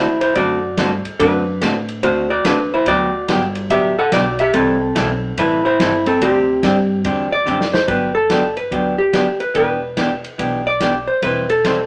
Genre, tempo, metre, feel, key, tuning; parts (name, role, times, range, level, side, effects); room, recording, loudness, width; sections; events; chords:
country, western swing; 144 BPM; 4/4; swing 65% on 8ths; G major; A4 = 439 Hz
vintage hollow-body jazz guitar; melody; 0.0-11.9 s; C4 to F#5; -19 LUFS; equal
vintage hollow-body jazz guitar; accompaniment; 0.0-11.8 s; C3 to C5; -22 LUFS; equal
upright bass; bass; 0.0-11.9 s; E1 to A2; -28 LUFS; equal
vintage drum kit; drums; 0.2-11.8 s; hi-hat, kick drum, ride cymbal, snare drum; -28 LUFS; equal
moderate studio reverb, RT60 0.5 s; -17 LUFS; mono
0.0-7.9 A section; 7.9-11.9 B section
drum fill 7.5-7.9
0.0 D7; 2.9 Gmaj7; 4.5 C6; 6.2 D7sus4; 7.9 Gmaj7; 9.6 Em7; 11.2 C/E